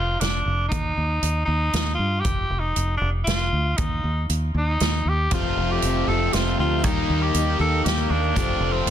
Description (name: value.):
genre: folk rock and heartland rock.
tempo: 118 BPM.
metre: 3/4.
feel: straight.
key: unclear.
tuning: A4 = 438 Hz.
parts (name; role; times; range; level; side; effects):
raspy tenor saxophone; melody; 0.0-8.9 s; C4 to A4; -25 LUFS; equal; analog delay.
fingered electric bass; bass; 0.0-8.9 s; F1 to G2; -24 LUFS; equal; none.
natural country drum kit; drums; 0.2-8.9 s; hi-hat, kick drum, snare drum; -26 LUFS; right 1 dB; none.
picked plugged-in steel-string acoustic guitar; accompaniment; 5.3-8.9 s; Eb3 to G4; -28 LUFS; left 6 dB; none.
accordion; sustained chords; 5.3-8.9 s; A4 to Eb6; -38 LUFS; right 3 dB; none.
biting overdriven guitar; riff; 5.3-8.9 s; F2 to G4; -26 LUFS; right 2 dB; none.
room: light reverb, small room ambience.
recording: dense, heavily limited modern master.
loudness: -20 LUFS.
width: side -10 dB against mid.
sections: 0.0-8.9 A section.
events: none.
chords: 0.0 Dm/F; 0.7 Eb; 2.3 Ebmaj9/F; 3.8 N.C.; 5.3 Fadd9; 6.8 Eb; 8.4 Fadd9.